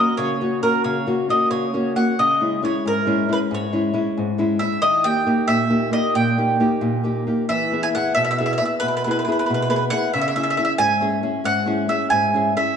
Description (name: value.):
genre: italian folk, Italian serenade.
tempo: 90 BPM (dotted quarters).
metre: 6/8.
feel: rubato.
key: unclear.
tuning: A4 = 440 Hz.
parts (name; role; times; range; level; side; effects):
bowl-back mandolin; melody; 0.0-12.8 s; A#4 to G#5; -20 LUFS; right 1 dB; none.
nylon-string guitar; accompaniment; 0.0-12.7 s; G#2 to G#4; -20 LUFS; left 1 dB; none.
room: wet concert hall reverb, RT60 1.7 s.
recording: nothing above 10.9 kHz.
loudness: -18 LUFS.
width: side -7 dB against mid.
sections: 0.0-12.8 A section.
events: none.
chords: 0.0 F#; 2.2 C#m; 4.8 D#; 7.5 E; 10.1 C#m.